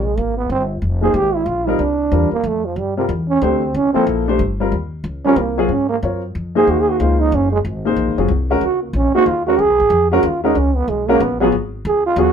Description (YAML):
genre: modal jazz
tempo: 185 BPM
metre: 3/4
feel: swing 62% on 8ths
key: unclear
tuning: A4 = 439 Hz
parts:
  - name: growling trombone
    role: second line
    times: 0.0-12.3 s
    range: C3 to Ab4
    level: -16 LUFS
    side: right 4 dB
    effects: none
  - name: upright bass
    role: bass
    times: 0.0-12.3 s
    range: F1 to G#2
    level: -21 LUFS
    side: left 1 dB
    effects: none
  - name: dark baby grand piano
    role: accompaniment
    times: 1.0-12.3 s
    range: F3 to C#5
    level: -18 LUFS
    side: left 4 dB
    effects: none
room: light reverb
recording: minimal, uncompressed stereo recording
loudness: -15 LUFS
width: side -7 dB against mid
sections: 0.0-5.7 A section; 5.7-12.3 A section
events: trombone solo 0.0-12.3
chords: 0.0 Bb7sus2; 1.8 C13sus4; 4.7 Eb7sus2; 5.7 G#13sus4; 9.6 C#13sus4